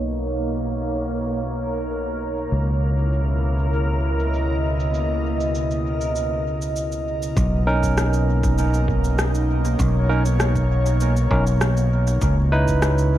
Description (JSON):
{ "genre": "ambient dub", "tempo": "99 BPM", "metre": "4/4", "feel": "straight", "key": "unclear", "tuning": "A4 = 440 Hz", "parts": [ { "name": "airy breathy pad", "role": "sustained chords", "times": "0.0-13.2 s", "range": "B2 to D#5", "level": "-26 LUFS", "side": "right 1 dB", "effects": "chorus" }, { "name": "fingered electric bass", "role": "bass", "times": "0.0-13.2 s", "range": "B1 to C#2", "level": "-21 LUFS", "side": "equal", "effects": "none" }, { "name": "backwards swelling texture", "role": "texture", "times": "0.1-7.4 s", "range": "A#3 to A#4", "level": "-32 LUFS", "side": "left 1 dB", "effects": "built-in reverb" }, { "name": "electronic shaker and rim click", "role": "drums", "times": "0.1-13.1 s", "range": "none", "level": "-29 LUFS", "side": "equal", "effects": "dub echo" }, { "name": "electronic kick drum", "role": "drums", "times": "7.4-12.8 s", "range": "none", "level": "-25 LUFS", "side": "equal", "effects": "none" }, { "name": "barky tine electric piano", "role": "stabs", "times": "7.7-13.2 s", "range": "C#4 to B4", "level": "-25 LUFS", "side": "right 3 dB", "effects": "medium stereo tremolo, dub echo" } ], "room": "light reverb", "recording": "vinyl crackle, low-pass filter", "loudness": "-19 LUFS", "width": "side -13 dB against mid", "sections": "0.0-7.4 A section; 7.4-13.2 B section", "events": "filter sweep 0.0-7.4", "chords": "0.0 Bmaj9; 2.5 C#m9; 7.4 Bmaj9; 12.2 C#m9" }